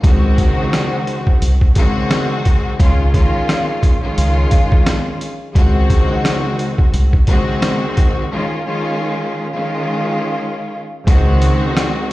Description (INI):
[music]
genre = hip hop, boom-bap hip-hop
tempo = 87 BPM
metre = 4/4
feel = swing 56% on 16ths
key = Db major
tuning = A4 = 439 Hz
[part]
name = bright studio string section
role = accompaniment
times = 0.0-12.1 s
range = Db2 to Gb4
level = -18 LUFS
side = equal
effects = high-pass filter, low-pass filter
[part]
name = deep dub fingered electric bass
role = bass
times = 0.0-11.5 s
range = C2 to Db2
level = -14 LUFS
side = equal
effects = none
[part]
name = trip hop sampler-style drum kit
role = drums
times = 0.0-11.9 s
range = hi-hat, kick drum, rim click, snare drum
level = -14 LUFS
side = equal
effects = none
[sound]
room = digital ambience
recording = played on a big sound system in a bare room, stone room reverb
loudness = -13 LUFS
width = side -18 dB against mid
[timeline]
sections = 0.0-11.1 A section; 11.1-12.1 B section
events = break 8.3-11.1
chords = 0.0 Ab7/Db; 2.8 Dbadd9; 5.6 Ab7/Db; 8.3 Dbadd9; 11.1 Ab7/Db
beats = | 0.04 0.73 1.42 2.11 | 2.80 3.48 4.17 4.87 | 5.55 6.24 6.93 7.62 | 8.31 9.00 9.69 10.38 | 11.07 11.76